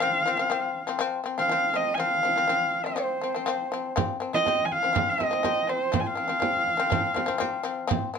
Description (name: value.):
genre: mongolian traditional, Mongolian folk.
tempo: 122 BPM.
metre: 4/4.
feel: straight.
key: unclear.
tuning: A4 = 438 Hz.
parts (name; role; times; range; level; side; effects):
dark horsehead fiddle; melody; 0.0-7.8 s; C5 to Ab5; -25 LUFS; right 1 dB; none.
shamisen; arpeggios; 0.0-8.2 s; F3 to C4; -29 LUFS; left 7 dB; none.
frame drum; percussion; 4.0-8.0 s; none; -29 LUFS; right 6 dB; none.
room: moderate studio reverb, RT60 0.6 s.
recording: none.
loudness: -23 LUFS.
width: side -6 dB against mid.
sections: 0.0-8.2 A section.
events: none.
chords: 0.0 F5.